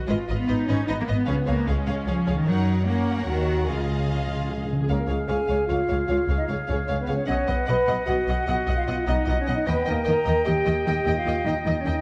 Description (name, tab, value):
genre	cinematic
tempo	150 BPM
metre	3/4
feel	straight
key	Db mixolydian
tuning	A4 = 443 Hz
part	clear symphonic viola section	accompaniment	0.0-11.9 s	Cb4 to Eb5	-36 LUFS	equal	none
part	rich symphonic violin section	melody	0.1-11.9 s	Eb5 to G5	-39 LUFS	equal	none
part	warm symphonic violin section	second line	0.1-11.9 s	Ab4 to Eb5	-38 LUFS	equal	none
part	clear symphonic cello section	bass	0.1-11.9 s	Db2 to Eb4	-31 LUFS	equal	none
part	rich symphonic double bass section	bass	0.1-11.9 s	Ab1 to Gb2	-29 LUFS	equal	none
part	timpani	percussion	1.3-4.9 s	Db3	-32 LUFS	equal	none
part	bright silver concert flute	second line	4.9-12.0 s	Ab4 to Cb6	-34 LUFS	equal	none
part	clear clarinet	second line	4.9-12.0 s	Ab4 to Eb5	-37 LUFS	equal	none
part	clear oboe	second line	4.9-12.0 s	F5 to G5	-36 LUFS	equal	none
part	mellow French horn section	sustained chords	4.9-12.0 s	Ab3 to Cb5	-28 LUFS	equal	none
room	moderate scoring stage reverb, RT60 1.6 s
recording	dark, warm production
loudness	-24 LUFS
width	mono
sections	0.0-4.9 A section; 4.9-12.0 B section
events	timpani fill 3.7-4.9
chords	0.1 Abm; 1.3 Db; 2.5 Gb; 3.7 Dbadd9; 4.9 Db; 7.3 Cb; 9.7 Eb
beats	| 0.08 0.48 0.88 | 1.28 1.68 2.08 | 2.48 2.88 3.28 | 3.68 4.08 4.49 | 4.89 5.29 5.69 | 6.09 6.49 6.88 | 7.28 7.68 8.08 | 8.47 8.87 9.27 | 9.67 10.07 10.46 | 10.86 11.26 11.66